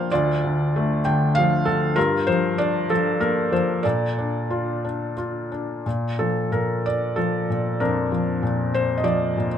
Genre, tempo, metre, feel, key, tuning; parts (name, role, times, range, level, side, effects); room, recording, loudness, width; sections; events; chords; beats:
classical, lyrical solo piano; 86-98 BPM; 3/4; rubato; Bb major from 5.9 s; A4 = 442 Hz
felt-muted upright piano; solo; 0.0-9.6 s; D2 to G5; -20 LUFS; left 1 dB
light reverb; close, detailed microphones; -20 LUFS; side -8 dB against mid
0.0-5.9 A section; 5.9-9.6 B section
0.1 Dm; 2.0 Gm7; 3.8 Bbmaj7
| 0.10 0.73 1.35 | 1.96 2.58 3.21 | 3.84 4.50 5.17 | 5.86 6.52 7.17 | 7.80 8.42 9.04